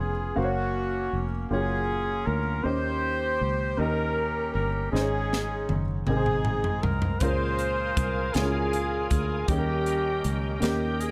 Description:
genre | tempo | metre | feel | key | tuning
slow gospel | 53 BPM (dotted quarters) | 6/8 | straight | unclear | A4 = 440 Hz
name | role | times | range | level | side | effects
breathy trumpet | melody | 0.0-11.1 s | Gb4 to C5 | -34 LUFS | equal | none
clear saxophone section | melody | 0.0-11.1 s | Bb3 to C5 | -34 LUFS | equal | none
warm grand piano | accompaniment | 0.0-11.1 s | Ab2 to F5 | -34 LUFS | equal | none
fingered electric bass | bass | 0.0-11.1 s | F1 to Eb2 | -32 LUFS | equal | none
crisp fusion drum kit | drums | 5.0-11.1 s | hi-hat, kick drum, snare drum, toms | -31 LUFS | equal | none
bright tonewheel organ | sustained chords | 7.2-11.1 s | Bb4 to Ab5 | -39 LUFS | equal | slow rotary speaker, chorus vibrato
room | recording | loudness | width
light reverb, small room ambience | none | -27 LUFS | mono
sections
0.0-11.1 A section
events
drum fill 4.9-7.2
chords
0.4 Gbmaj7; 2.7 Eb7; 4.9 Absus4; 6.1 Ab; 7.2 Db6; 9.5 Eb7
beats
| 0.38 1.52 | 2.66 3.80 | 4.94 6.08 | 7.21 8.35 | 9.49 10.62

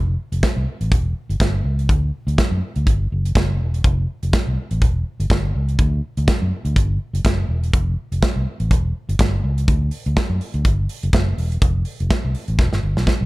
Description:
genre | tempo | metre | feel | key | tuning
disco | 123 BPM | 4/4 | swing 56% on 16ths | unclear | A4 = 438 Hz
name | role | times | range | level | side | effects
fingered electric bass | bass | 0.0-13.3 s | E1 to F#2 | -20 LUFS | equal | none
modern studio drum kit | drums | 0.3-13.2 s | hi-hat, kick drum, snare drum | -19 LUFS | equal | none
room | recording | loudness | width
little or no reverb | dark, warm production | -17 LUFS | side -20 dB against mid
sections
0.0-13.3 A section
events
drum fill 12.6-13.3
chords
none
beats
0.42 0.91 1.40 | 1.89 2.38 2.87 3.35 | 3.84 4.33 4.82 5.30 | 5.79 6.28 6.76 7.25 | 7.74 8.22 8.71 9.20 | 9.68 10.17 10.65 11.14 | 11.62 12.11 12.59 13.07

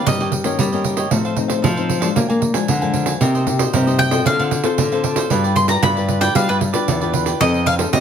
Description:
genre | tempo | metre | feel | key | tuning
samba and choro | 114 BPM | 4/4 | straight | unclear | A4 = 438 Hz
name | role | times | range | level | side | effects
bowl-back mandolin | melody | 0.0-0.3, 4.0-8.0 s | B4 to C6 | -20 LUFS | equal | tape echo
cavaquinho | accompaniment | 0.0-7.9 s | D4 to Ab5 | -26 LUFS | right 5 dB | none
nylon-string guitar | accompaniment | 0.0-8.0 s | F2 to B4 | -22 LUFS | left 8 dB | none
nylon-string guitar | bass | 0.1-8.0 s | E2 to Bb3 | -20 LUFS | equal | none
pandeiro | percussion | 0.1-8.0 s | none | -21 LUFS | right 5 dB | none
room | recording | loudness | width
moderate studio reverb, RT60 0.6 s | none | -15 LUFS | side -8 dB against mid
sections
0.0-7.4 A section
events
mandolin solo 0.0-7.4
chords
0.1 Eb7/G; 1.1 F7/A; 2.2 Bb7; 3.2 Cm7; 4.3 Dm7; 5.3 G7; 7.4 F7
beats
0.07 0.59 | 1.12 1.64 2.16 2.69 | 3.21 3.73 4.26 4.78 | 5.31 5.83 6.35 6.88 | 7.40 7.93

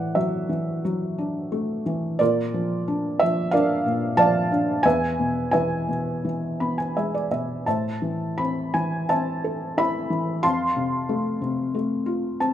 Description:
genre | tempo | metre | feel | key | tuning
classical, lyrical solo piano | 82-92 BPM | 4/4 | rubato | A harmonic minor | A4 = 440 Hz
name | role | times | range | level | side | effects
felt-muted upright piano | solo | 0.0-12.5 s | E2 to C6 | -22 LUFS | equal | none
room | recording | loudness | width
light reverb | close, detailed microphones | -22 LUFS | side -11 dB against mid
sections
0.0-12.5 A section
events
felt piano fill 6.2-7.7, 12.1-12.5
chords
0.0 Dadd9/A; 2.2 Bb; 4.9 E; 7.7 Amadd9; 10.4 F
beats
0.15 0.84 1.52 | 2.20 2.87 3.53 4.18 | 4.85 5.53 6.22 6.95 | 7.66 8.37 9.09 9.77 | 10.44 11.10 11.75 12.41

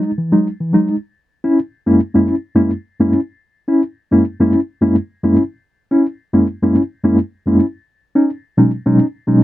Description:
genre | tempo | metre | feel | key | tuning
disco | 107 BPM | 4/4 | straight | unclear | A4 = 437 Hz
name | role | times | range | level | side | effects
reed electric piano | solo | 0.0-9.4 s | F#2 to E4 | -12 LUFS | equal | fast tremolo
room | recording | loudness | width
light reverb | dry, close 1970s-style studio recording | -14 LUFS | side -15 dB against mid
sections
0.0-7.9 A section; 7.9-9.4 B section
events
none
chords
0.0 Emaj7; 1.2 F#9; 7.9 B69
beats
0.05 0.61 | 1.17 1.73 2.29 2.85 | 3.40 3.96 4.52 5.08 | 5.64 6.20 6.76 7.32 | 7.88 8.43 8.99

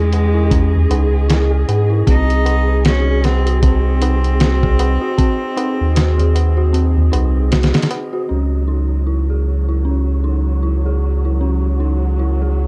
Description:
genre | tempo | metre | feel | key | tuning
trip hop | 77 BPM | 4/4 | swing 58% on 16ths | C# harmonic minor | A4 = 439 Hz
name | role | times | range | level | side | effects
rich cello | melody | 0.0-7.5 s | G#3 to D#4 | -26 LUFS | equal | dub echo
dark chamber string section | sustained chords | 0.0-12.7 s | F#3 to G#4 | -29 LUFS | equal | vintage 12-bit sampler grit
dark detuned synth bell | arpeggios | 0.0-12.7 s | B#3 to G#4 | -25 LUFS | equal | chorus, vintage 12-bit sampler grit, low-pass filter, tape echo
warm sub bass | bass | 0.0-12.7 s | B#1 to G#2 | -17 LUFS | equal | none
wind-like tuned noise texture | texture | 0.0-12.7 s | F#3 to D#5 | -37 LUFS | equal | built-in reverb
dusty soul sampler-style drum kit | drums | 0.1-8.1 s | hi-hat, kick drum, snare drum | -19 LUFS | equal | none
tabla | percussion | 0.1-8.3 s | none | -28 LUFS | equal | none
room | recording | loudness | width
small room ambience | none | -16 LUFS | mono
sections
0.0-8.3 A section; 8.3-12.7 B section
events
none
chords
0.0 C#madd9; 2.1 G#7/B#; 8.3 C#madd9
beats
0.51 1.29 | 2.07 2.85 3.63 4.41 | 5.18 5.96 6.74 7.52 | 8.30 9.08 9.86 10.64 | 11.42 12.20

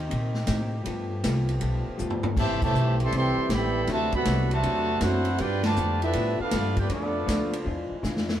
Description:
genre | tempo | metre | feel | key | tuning
jazz, big band swing | 159 BPM | 4/4 | swing 66% on 8ths | G major | A4 = 440 Hz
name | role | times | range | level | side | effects
mellow trombone section | sustained chords | 0.0-8.4 s | D3 to Bb4 | -37 LUFS | left 2 dB | none
upright bass | bass | 0.0-8.4 s | E1 to Bb2 | -28 LUFS | equal | none
vintage hollow-body jazz guitar | accompaniment | 0.1-8.3 s | A2 to A4 | -35 LUFS | left 4 dB | none
swinging big-band drum kit | drums | 0.1-8.4 s | crash cymbal, hi-hat, kick drum, ride cymbal, snare drum, toms | -31 LUFS | equal | none
clear trumpet section | melody | 2.4-7.6 s | B3 to C6 | -28 LUFS | right 1 dB | none
dark trombone section | second line | 2.4-7.6 s | C3 to G4 | -30 LUFS | right 2 dB | none
room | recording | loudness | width
moderate plate reverb, RT60 1.5 s | heard from further back in the room | -23 LUFS | side -11 dB against mid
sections
0.0-8.4 A section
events
drum fill 2.0-2.4, 8.0-8.4; band accent 2.6, 5.6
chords
0.0 Cm7; 0.9 G9; 2.4 Am7; 3.9 D9; 5.4 G9; 6.9 Bm7b5; 7.7 E7b9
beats
0.10 0.48 | 0.85 1.23 1.61 1.99 | 2.37 2.74 3.12 3.50 | 3.88 4.25 4.63 5.01 | 5.39 5.76 6.14 6.52 | 6.90 7.27 7.65 8.03

